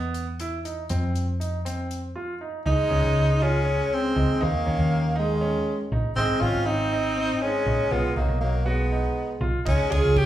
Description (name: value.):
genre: progressive instrumental, band music in an uneven meter.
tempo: 240 BPM (eighths).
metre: 7/8.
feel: straight.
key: unclear.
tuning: A4 = 442 Hz.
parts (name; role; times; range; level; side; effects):
clear baby grand piano; arpeggios; 0.0-10.3 s; B3 to F#4; -31 LUFS; right 3 dB; plate reverb, slapback echo.
hollow-body short-scale picked electric bass; bass; 0.0-10.3 s; Ab1 to F2; -24 LUFS; equal; none.
damped 70s drum kit; drums; 0.1-2.0, 9.7-10.3 s; hi-hat, kick drum, ride cymbal; -33 LUFS; equal; none.
warm tenor saxophone; melody; 2.7-10.3 s; Ab3 to Ab4; -25 LUFS; equal; plate reverb, slapback echo.
bright trombone; second line; 2.7-10.3 s; Eb3 to F4; -31 LUFS; right 1 dB; plate reverb, slapback echo, ping-pong delay.
room: light reverb.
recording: live gig heard through the venue's PA, club reverb.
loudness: -22 LUFS.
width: side -12 dB against mid.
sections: 0.0-2.7 A section; 2.7-10.3 B section.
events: break 2.2-2.7.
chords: 0.0 E5; 0.9 F5; 2.7 Db5; 4.4 Ebsus4; 6.2 Ab; 7.9 B6; 9.7 Db.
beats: 0.15 0.40 0.65 | 0.90 1.15 1.40 1.66 1.91 2.16 2.41 | 2.66 2.91 3.16 3.41 3.66 3.91 4.16 | 4.41 4.66 4.91 5.16 5.41 5.66 5.91 | 6.16 6.41 6.66 6.92 7.17 7.42 7.67 | 7.92 8.16 8.41 8.66 8.92 9.17 9.42 | 9.67 9.92 10.17.